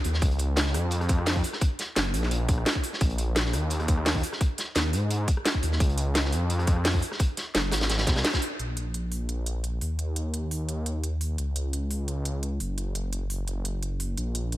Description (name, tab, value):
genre	liquid drum and bass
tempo	172 BPM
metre	4/4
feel	straight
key	unclear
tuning	A4 = 441 Hz
part	swelling detuned saw bass	bass	0.0-14.6 s	Gb1 to Ab2	-27 LUFS	equal	none
part	crunchy breakbeat drum kit	drums	0.0-8.4 s	hi-hat, snare drum	-32 LUFS	equal	high-pass filter on hats, high-pass filter on snare, high-pass filter on room
part	garage drum kit	drums	0.0-14.6 s	hi-hat, rim click, snare drum	-30 LUFS	equal	none
part	electronic kick drum	drums	0.2-8.4 s	none	-25 LUFS	equal	none
room	little or no reverb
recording	none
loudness	-25 LUFS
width	side -16 dB against mid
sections	0.0-8.6 A section; 8.6-14.6 B section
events	drop 0.0-8.6; band accent 8.2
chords	none